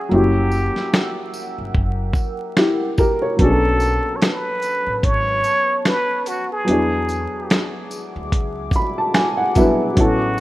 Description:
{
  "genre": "lo-fi hip hop",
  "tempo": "73 BPM",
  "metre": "4/4",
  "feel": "swing 58% on 16ths",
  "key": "unclear",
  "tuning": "A4 = 439 Hz",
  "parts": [
    { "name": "trumpet with plunger mute", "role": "melody", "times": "0.0-10.4 s", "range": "F#4 to C#5", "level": "-22 LUFS", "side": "equal", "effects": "low-pass filter" },
    { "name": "dark upright piano", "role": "accompaniment", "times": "0.0-10.4 s", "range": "F#3 to B5", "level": "-20 LUFS", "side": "equal", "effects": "cassette tape, low-pass filter" },
    { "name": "deep dark ambient pad", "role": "sustained chords", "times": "0.0-10.4 s", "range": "G#4 to E6", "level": "-31 LUFS", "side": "equal", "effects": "chorus, built-in reverb, low-pass filter" },
    { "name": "upright bass", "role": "bass", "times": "0.1-10.4 s", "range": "F#1 to E2", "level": "-23 LUFS", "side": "equal", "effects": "none" },
    { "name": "tambourine", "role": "percussion", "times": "0.5-10.4 s", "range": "none", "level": "-41 LUFS", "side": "left 1 dB", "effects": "none" },
    { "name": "dusty soul sampler-style drum kit", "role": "drums", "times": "0.8-10.2 s", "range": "finger snaps, hi-hat, kick drum, shaker, snare drum", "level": "-19 LUFS", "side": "equal", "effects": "none" }
  ],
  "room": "light reverb",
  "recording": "rough home demo mix, vinyl crackle",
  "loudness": "-16 LUFS",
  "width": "side -16 dB against mid",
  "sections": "0.0-10.4 A section",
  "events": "break 0.0-3.4",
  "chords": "0.1 F#7b9; 3.4 Bm9; 6.7 E9"
}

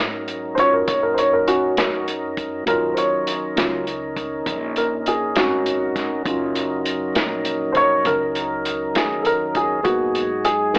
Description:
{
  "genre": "slow blues",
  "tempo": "67 BPM (dotted quarters)",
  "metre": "12/8",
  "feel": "straight",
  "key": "Eb minor",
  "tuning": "A4 = 441 Hz",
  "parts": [
    { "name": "mellow tonewheel organ", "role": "sustained chords", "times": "0.0-10.8 s", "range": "Gb3 to Bb4", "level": "-28 LUFS", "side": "equal", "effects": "slow rotary speaker" },
    { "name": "upright bass", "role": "bass", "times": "0.0-10.8 s", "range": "Gb1 to Bb2", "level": "-38 LUFS", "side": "equal", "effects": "none" },
    { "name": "vintage drum kit", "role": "drums", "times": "0.3-10.8 s", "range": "hi-hat, kick drum, snare drum", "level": "-26 LUFS", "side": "equal", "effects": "none" },
    { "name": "dark upright piano", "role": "accompaniment", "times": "0.6-10.8 s", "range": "Gb3 to Db5", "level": "-22 LUFS", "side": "equal", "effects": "none" }
  ],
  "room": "light reverb",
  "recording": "AM radio sound",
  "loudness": "-21 LUFS",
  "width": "mono",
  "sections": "0.0-10.8 A section",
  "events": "upright piano solo 0.0-10.8",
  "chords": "0.0 Ebm7; 9.8 Abm7"
}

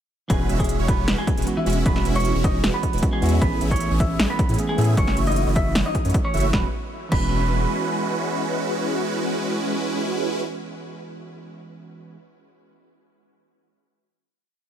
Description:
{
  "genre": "future bass",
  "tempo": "154 BPM",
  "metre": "4/4",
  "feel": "half-time",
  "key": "E major",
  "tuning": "A4 = 440 Hz",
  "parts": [
    { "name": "clean electric guitar", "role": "melody", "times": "0.3-10.5 s", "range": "E3 to E5", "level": "-28 LUFS", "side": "right 1 dB", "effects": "sidechain pumping, digital delay" },
    { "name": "bell-like tine electric piano", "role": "accompaniment", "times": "0.3-12.2 s", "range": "E3 to G#4", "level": "-30 LUFS", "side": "right 3 dB", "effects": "sidechain pumping" },
    { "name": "supersaw chords", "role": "riff", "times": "0.3-10.4 s", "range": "G#3 to E5", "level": "-26 LUFS", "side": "right 1 dB", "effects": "phaser, sidechain pumping" },
    { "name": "saturated sub bass", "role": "bass", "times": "0.3-7.7 s", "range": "E1 to A2", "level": "-23 LUFS", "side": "equal", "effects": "sidechain pumping" },
    { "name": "big-room dance drum kit", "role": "drums", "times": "0.3-7.2 s", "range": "crash cymbal, hi-hat, snare drum", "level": "-27 LUFS", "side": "equal", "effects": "overdrive" },
    { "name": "electronic kick drum", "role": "drums", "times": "0.3-7.2 s", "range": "none", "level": "-23 LUFS", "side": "equal", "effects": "overdrive" }
  ],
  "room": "digital ambience",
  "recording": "none",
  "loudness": "-19 LUFS",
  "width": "side -10 dB against mid",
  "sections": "0.3-6.5 drop; 6.5-9.6 final chord",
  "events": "drop 0.3-6.5",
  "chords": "0.3 E69; 3.4 Amaj9; 5.0 F#m7; 6.5 E69"
}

